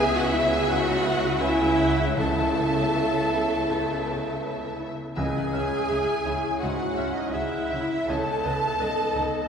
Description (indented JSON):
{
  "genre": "cinematic, emotional film score for orchestra",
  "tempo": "75-87 BPM",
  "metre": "4/4",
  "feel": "rubato",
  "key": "unclear",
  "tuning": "A4 = 439 Hz",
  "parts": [
    { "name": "rich studio violin section", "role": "melody", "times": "0.0-9.2 s", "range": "D#5 to E5", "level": "-35 LUFS", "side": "right 1 dB", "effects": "none" },
    { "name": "concert flute", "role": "second line", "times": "0.0-9.2 s", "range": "D#5 to A5", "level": "-32 LUFS", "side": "left 1 dB", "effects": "none" },
    { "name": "rich studio violin section", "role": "second line", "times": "0.0-9.5 s", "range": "D#5 to A5", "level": "-32 LUFS", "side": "equal", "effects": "none" },
    { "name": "warm clarinet", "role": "second line", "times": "0.0-9.5 s", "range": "B4 to G#5", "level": "-33 LUFS", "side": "right 1 dB", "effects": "none" },
    { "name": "felt-muted upright piano", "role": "accompaniment", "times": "0.0-9.5 s", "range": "C#2 to B4", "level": "-34 LUFS", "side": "equal", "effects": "none" },
    { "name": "rich studio viola section", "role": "accompaniment", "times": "0.0-9.5 s", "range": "D#4 to A4", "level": "-28 LUFS", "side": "equal", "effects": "none" },
    { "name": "dark French horn section", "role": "sustained chords", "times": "0.0-9.5 s", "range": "B3 to E4", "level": "-32 LUFS", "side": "left 1 dB", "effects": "none" },
    { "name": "clear studio double bass section", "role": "bass", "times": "0.0-9.2 s", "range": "C#2", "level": "-33 LUFS", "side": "right 1 dB", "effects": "none" },
    { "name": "rich studio cello section", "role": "bass", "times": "0.0-9.2 s", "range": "C#3", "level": "-33 LUFS", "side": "equal", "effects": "none" },
    { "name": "timpani", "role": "percussion", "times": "0.0-6.2 s", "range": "C#3", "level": "-34 LUFS", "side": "left 1 dB", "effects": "none" }
  ],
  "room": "wet scoring stage reverb, RT60 2.1 s",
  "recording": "recorded in a church or concert hall",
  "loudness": "-22 LUFS",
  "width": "side -7 dB against mid",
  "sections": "0.0-9.5 A section",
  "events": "none",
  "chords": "0.0 E5/C#; 5.2 C#m; 8.1 B/C#",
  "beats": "0.68 1.39 | 2.17 2.93 3.68 4.43 | 5.17 5.89 6.61 7.32 | 8.08 8.79"
}